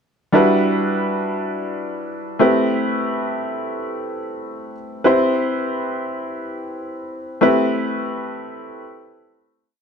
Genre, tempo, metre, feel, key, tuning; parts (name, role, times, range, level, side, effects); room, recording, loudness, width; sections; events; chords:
soul; free time; A dorian; A4 = 440 Hz
bright grand piano; solo; 0.3-9.8 s; G3 to C5; -19 LUFS; equal
moderate echo chamber reverb, RT60 1.6 s; dark, warm production; -18 LUFS; side -6 dB against mid
0.3-9.8 verse
fade-out 7.4-9.8
0.3 Em9; 2.4 Am9; 5.1 Cmaj7; 7.4 Am9